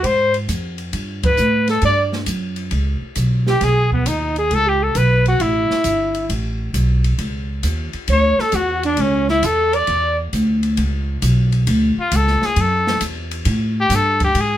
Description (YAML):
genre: jazz, small-group swing and bop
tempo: 134 BPM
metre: 4/4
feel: swing 68% on 8ths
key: D major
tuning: A4 = 440 Hz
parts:
  - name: clear trumpet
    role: melody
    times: 0.0-14.6 s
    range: B3 to D5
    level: -18 LUFS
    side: left 2 dB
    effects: none
  - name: mellow alto saxophone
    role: second line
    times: 0.0-10.2 s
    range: B3 to D5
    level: -20 LUFS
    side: right 3 dB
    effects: none
  - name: upright bass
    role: bass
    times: 0.0-14.6 s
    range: G1 to A2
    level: -18 LUFS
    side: equal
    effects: none
  - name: open jazz drum kit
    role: drums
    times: 0.0-14.5 s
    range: hi-hat, kick drum, ride cymbal, snare drum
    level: -26 LUFS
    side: left 1 dB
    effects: none
room: light reverb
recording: minimal, uncompressed stereo recording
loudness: -15 LUFS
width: side -12 dB against mid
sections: 0.0-11.7 A section; 11.7-14.6 B section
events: band accent 1.2; trumpet solo 11.7-14.6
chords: 0.0 Fm; 0.9 Gmaj9; 2.7 B69; 4.5 G69; 6.3 A; 8.1 Dsus2; 10.8 Bsus2; 11.7 Dmaj9; 13.5 Gsus2